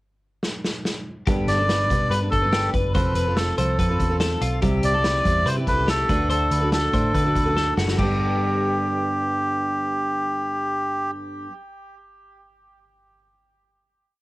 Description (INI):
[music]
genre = jangly indie pop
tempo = 143 BPM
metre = 4/4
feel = straight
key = G major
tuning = A4 = 442 Hz
[part]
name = vintage drum kit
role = drums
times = 0.4-8.1 s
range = crash cymbal, hi-hat, kick drum, snare drum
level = -26 LUFS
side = equal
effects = cassette tape
[part]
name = picked steel-string acoustic guitar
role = accompaniment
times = 1.3-11.5 s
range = G2 to B4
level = -27 LUFS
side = right 2 dB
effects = cassette tape
[part]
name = twelve-string electric guitar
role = arpeggios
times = 1.3-9.2 s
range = F4 to C5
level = -29 LUFS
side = left 4 dB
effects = wide subtle chorus, cassette tape
[part]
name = vintage muted picked electric bass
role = bass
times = 1.3-11.1 s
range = F1 to D3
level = -25 LUFS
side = equal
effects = none
[part]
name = melodica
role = melody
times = 1.5-11.1 s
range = G4 to D5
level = -24 LUFS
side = equal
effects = cassette tape, tape echo
[sound]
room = little or no reverb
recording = home recording on cassette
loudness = -20 LUFS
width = side -19 dB against mid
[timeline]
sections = 0.0-1.3 pickup bar; 1.3-8.0 verse; 8.0-11.4 final chord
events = drum fill 0.4-1.3, 7.6-8.0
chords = 0.0 N.C.; 1.3 G; 3.0 F; 4.6 C; 6.1 D; 8.0 G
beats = 0.01 0.43 0.85 | 1.27 1.69 2.11 2.53 | 2.95 3.37 3.79 4.21 | 4.63 5.05 5.47 5.89 | 6.31 6.73 7.15 7.57 | 7.99 8.41 8.83 9.25 | 9.67 10.10 10.52 10.94